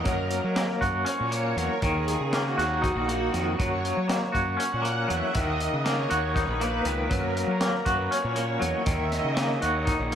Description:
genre	psychedelic rock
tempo	239 BPM (eighths)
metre	7/8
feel	straight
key	F# mixolydian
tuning	A4 = 440 Hz
part	string machine, full ensemble	sustained chords	0.0-9.8 s	F#4 to F#5	-31 LUFS	right 3 dB	ensemble chorus
part	twangy electric guitar	riff	0.0-10.2 s	D#3 to F#4	-27 LUFS	left 1 dB	tremolo
part	fuzz fingered electric bass	bass	0.0-10.2 s	A#1 to F#3	-30 LUFS	equal	overdrive
part	crunchy breakbeat drum kit	drums	0.1-10.2 s	hi-hat, kick drum, snare drum	-31 LUFS	equal	none
room	studio reverb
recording	none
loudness	-24 LUFS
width	side -8 dB against mid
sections	0.0-10.2 A section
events	string machine solo 0.0-10.2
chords	0.1 F#; 1.8 D#m; 3.6 F#; 5.4 D#m; 7.1 F#; 8.9 D#m

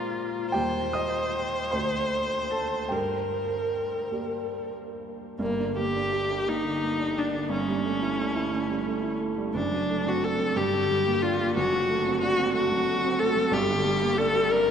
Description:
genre	classical, romantic duo for viola and grand piano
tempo	44-62 BPM (dotted quarters)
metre	6/8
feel	rubato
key	G minor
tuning	A4 = 440 Hz
part	rich viola	melody	0.0-14.7 s	Bb3 to C5	-26 LUFS	left 2 dB	none
part	clear grand piano	accompaniment	0.0-14.7 s	F#1 to Eb6	-29 LUFS	right 3 dB	none
room	wet cathedral reverb, RT60 6.5 s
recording	recorded in a church or concert hall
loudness	-24 LUFS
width	side -8 dB against mid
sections	0.0-5.4 A section; 5.4-14.7 B section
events	none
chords	0.0 Bb7; 0.5 Eb; 1.7 D7; 2.9 Gm; 7.5 A7/G; 9.6 D7/F#; 10.6 Gm; 11.6 D7/F#; 13.5 Gm

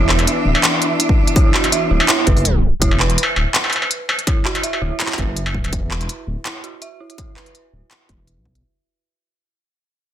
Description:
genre	half-time drum and bass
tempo	165 BPM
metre	4/4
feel	half-time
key	unclear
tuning	A4 = 441 Hz
part	bright studio cello section	sustained chords	0.0-2.8 s	E3 to D4	-22 LUFS	left 2 dB	sidechain pumping
part	dark detuned synth bell	arpeggios	0.0-8.7 s	E4 to E5	-24 LUFS	right 5 dB	chorus, tremolo, vintage 12-bit sampler grit, low-pass filter, digital delay
part	dark detuned saw bass	bass	0.0-8.6 s	D1 to B1	-19 LUFS	equal	none
part	flickering grainy texture	texture	0.0-2.8 s	E5	-30 LUFS	right 4 dB	built-in reverb
part	industrial drum kit	drums	0.1-8.6 s	handclaps, hi-hat, struck metal	-18 LUFS	equal	soft clipping on snare
part	electronic kick drum	drums	1.1-8.5 s	none	-18 LUFS	equal	none
room	light reverb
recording	dense, heavily limited modern master, tape stop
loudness	-15 LUFS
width	side -11 dB against mid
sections	0.0-2.8 A section; 2.8-8.6 B section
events	drop 0.0-2.8; tape stop 2.5-2.8; fade-out 2.8-8.6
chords	0.0 E5

